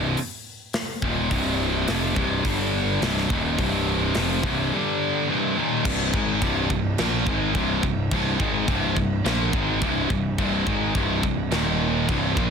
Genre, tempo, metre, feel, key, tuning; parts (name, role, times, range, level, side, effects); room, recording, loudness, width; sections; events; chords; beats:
heavy metal; 106 BPM; 4/4; straight; C minor; A4 = 438 Hz
scooped high-gain guitar; riff; 0.0-12.5 s; C2 to Bb3; -25 LUFS; right 12 dB; distortion
sludgy distorted guitar; riff; 0.0-12.5 s; C2 to Bb3; -26 LUFS; left 13 dB; overdrive
fuzz picked electric bass; bass; 0.0-12.5 s; C1 to Bb1; -28 LUFS; equal; overdrive
tight metal drum kit; drums; 0.2-12.5 s; crash cymbal, hi-hat, kick drum, snare drum; -28 LUFS; equal; soft clipping on kick
little or no reverb; dense, heavily limited modern master; -21 LUFS; side -6 dB against mid
0.0-5.9 A section; 5.9-12.5 B section
half time 5.9-12.5
0.0 Cm; 2.4 G5; 3.0 Cm; 4.7 G5; 5.3 Cm; 11.5 Eb5
0.18 0.74 | 1.31 1.88 2.45 3.02 | 3.58 4.15 4.72 5.29 | 5.86 6.42 6.99 7.56 | 8.12 8.69 9.26 9.82 | 10.39 10.96 11.53 12.09